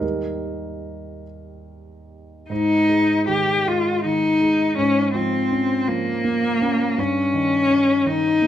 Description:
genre	classical, romantic duo for cello and grand piano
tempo	48-56 BPM (dotted quarters)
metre	6/8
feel	rubato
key	Ab major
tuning	A4 = 442 Hz
part	warm grand piano	accompaniment	0.0-8.5 s	Eb2 to Bb4	-25 LUFS	right 3 dB	none
part	warm cello	melody	2.5-8.5 s	Bb3 to G4	-18 LUFS	left 2 dB	none
room	moderate recital hall reverb, RT60 1.5 s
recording	close, detailed microphones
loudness	-18 LUFS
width	side -11 dB against mid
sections	0.0-2.5 A section; 2.5-8.5 B section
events	none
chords	0.0 Eb; 2.5 Ab5; 4.8 Bbm7/Ab; 7.0 Eb7/G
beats	| 0.02 1.26 | 2.50 3.67 | 4.78 5.88 | 6.98 8.06

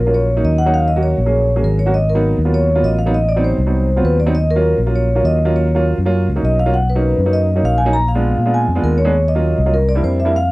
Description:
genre	Afro-Cuban jazz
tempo	200 BPM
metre	4/4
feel	straight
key	Eb minor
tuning	A4 = 444 Hz
part	vibraphone with soft mallets	melody	0.0-10.5 s	Bb4 to Bb5	-18 LUFS	equal	none
part	fingered electric bass	bass	0.0-10.5 s	Ab1 to Bb2	-16 LUFS	equal	none
part	warm upright piano	accompaniment	0.1-10.3 s	Gb3 to Ab4	-20 LUFS	right 2 dB	none
room	small room reverb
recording	dry, close 1970s-style studio recording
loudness	-13 LUFS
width	side -20 dB against mid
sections	0.0-10.5 A section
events	none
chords	0.0 Ebm7; 1.9 Abm7; 3.1 Adim7; 4.3 Ebm7; 6.7 Bmaj7; 7.9 Bb7b9; 9.1 Ebm7; 9.7 C7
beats	0.14 0.44 | 0.74 1.04 1.34 1.64 | 1.94 2.24 2.54 2.84 | 3.14 3.44 3.73 4.04 | 4.33 4.63 4.93 5.23 | 5.53 5.83 6.13 6.43 | 6.74 7.04 7.33 7.63 | 7.94 8.24 8.54 8.84 | 9.14 9.44 9.74 10.04 | 10.34

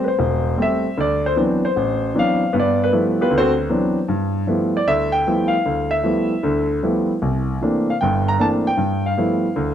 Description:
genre	solo jazz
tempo	154 BPM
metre	4/4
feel	swing 66% on 8ths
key	G mixolydian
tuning	A4 = 440 Hz
part	warm grand piano	solo	0.0-9.7 s	E1 to Bb5	-17 LUFS	equal	none
room	moderate large studio reverb, RT60 1.4 s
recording	dark, warm production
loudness	-17 LUFS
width	side -9 dB against mid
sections	0.0-4.1 A section; 4.1-9.7 B section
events	grand piano solo 0.0-4.1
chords	0.0 Am7; 1.0 D13; 2.5 G13; 3.3 D13; 4.1 G13; 7.2 C13; 8.8 G13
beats	0.19 0.58 | 0.97 1.36 1.75 2.14 | 2.53 2.92 3.31 3.71 | 4.10 4.49 4.88 5.27 | 5.66 6.05 6.44 6.83 | 7.22 7.62 8.01 8.40 | 8.79 9.18 9.57

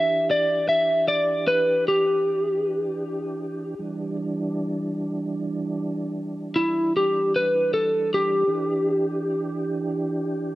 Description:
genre	blues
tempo	51 BPM (dotted quarters)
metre	12/8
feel	straight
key	E minor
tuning	A4 = 440 Hz
part	lightly driven lead guitar	melody	0.0-9.6 s	E4 to E5	-21 LUFS	equal	none
part	mellow tonewheel organ	sustained chords	0.0-10.6 s	E3 to G4	-28 LUFS	right 2 dB	slow rotary speaker, chorus vibrato
room	light reverb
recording	rough home demo mix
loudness	-21 LUFS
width	side -16 dB against mid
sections	0.0-10.6 A section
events	none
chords	0.0 Em7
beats	0.27 1.44 2.61 | 3.79 4.96 6.13 7.30 | 8.47 9.65

